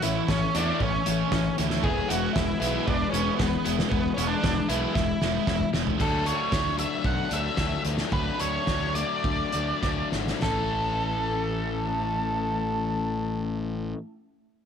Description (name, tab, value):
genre	indie rock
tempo	97-116 BPM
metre	4/4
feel	straight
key	A major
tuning	A4 = 442 Hz
part	octave-fuzz lead guitar	melody	0.0-13.9 s	B3 to F#5	-29 LUFS	right 2 dB	distortion, slapback echo
part	lush unison pad	sustained chords	0.0-6.0 s	G#4 to C#6	-38 LUFS	right 1 dB	chorus
part	biting overdriven guitar	riff	0.0-14.0 s	A2 to A4	-30 LUFS	left 11 dB	none
part	raw garage guitar	riff	0.0-6.0 s	E3 to E4	-33 LUFS	right 14 dB	overdrive, lush chorus, slapback echo
part	fuzz fingered electric bass	bass	0.0-13.9 s	E1 to E2	-31 LUFS	right 1 dB	overdrive
part	loose indie drum kit	drums	0.0-10.6 s	crash cymbal, hi-hat, kick drum, snare drum, toms	-29 LUFS	right 1 dB	none
room	light reverb, studio reverb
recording	1960s-style stereo with parts hard left and right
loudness	-24 LUFS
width	side -7 dB against mid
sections	0.0-6.0 A section; 6.0-10.4 B section; 10.4-14.7 C section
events	drum fill 5.0-6.0, 9.8-10.4; slowing down 6.0-10.4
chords	0.0 A; 1.8 E; 6.0 D; 10.4 A